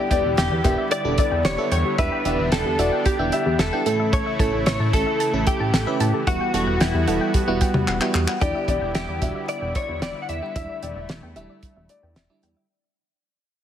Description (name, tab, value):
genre	synth-pop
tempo	112 BPM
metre	4/4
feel	straight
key	E dorian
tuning	A4 = 437 Hz
part	direct-recorded clean electric guitar	melody	0.0-12.1 s	E4 to F#5	-25 LUFS	equal	ensemble chorus, ping-pong delay
part	dark baby grand piano	second line	0.0-3.7, 8.4-12.3 s	D5 to E5	-28 LUFS	left 5 dB	ping-pong delay
part	FM electric piano	accompaniment	0.0-12.7 s	G3 to B4	-27 LUFS	right 4 dB	chorus
part	brassy analog pad	sustained chords	0.0-12.7 s	C#3 to F#4	-30 LUFS	left 1 dB	chorus
part	soft round pluck	arpeggios	0.0-12.7 s	G4 to A5	-31 LUFS	left 3 dB	chorus, ping-pong delay
part	chorused synth bass	bass	0.1-12.6 s	E1 to A2	-26 LUFS	equal	none
part	damped 70s drum kit	drums	0.1-12.6 s	cowbell, handclaps, hi-hat, kick drum, snare drum, toms	-24 LUFS	equal	none
room	light reverb, small room ambience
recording	heavily compressed radio sound, multiband compression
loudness	-19 LUFS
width	side -10 dB against mid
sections	0.0-8.4 A section; 8.4-12.7 B section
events	drum fill 7.9-8.4; fade-out 8.4-12.7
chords	0.0 Em7; 3.9 A; 6.3 Emadd9; 8.4 Em7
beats	0.38 0.91 1.45 | 1.99 2.52 3.06 3.59 | 4.13 4.66 5.20 5.74 | 6.27 6.81 7.34 7.88 | 8.41 8.95 9.49 10.02 | 10.56 11.09 11.63 12.16